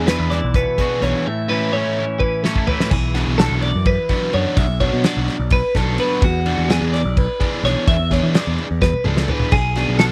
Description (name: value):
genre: math rock and midwest emo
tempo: 254 BPM (eighths)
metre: 7/8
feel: straight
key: unclear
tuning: A4 = 440 Hz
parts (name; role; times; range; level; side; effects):
- twelve-string electric guitar; accompaniment; 0.0-4.6 s; E2 to F#4; -27 LUFS; equal; none
- twelve-string electric guitar; arpeggios; 0.0-10.1 s; F#4 to E5; -24 LUFS; equal; spring reverb
- overdriven electric guitar; riff; 0.0-10.1 s; E3 to G#4; -26 LUFS; equal; none
- picked electric bass; bass; 0.0-10.1 s; B1 to E3; -23 LUFS; equal; none
- loose indie drum kit; drums; 0.1-10.1 s; crash cymbal, hi-hat, kick drum, ride cymbal, snare drum, toms; -22 LUFS; equal; none
room: studio ambience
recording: dry, close 1970s-style studio recording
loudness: -18 LUFS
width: mono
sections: 0.0-2.9 A section; 2.9-10.1 B section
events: drum fill 2.2-2.9, 8.8-9.5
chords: 0.0 E13; 1.3 Aadd9; 2.9 Bmadd9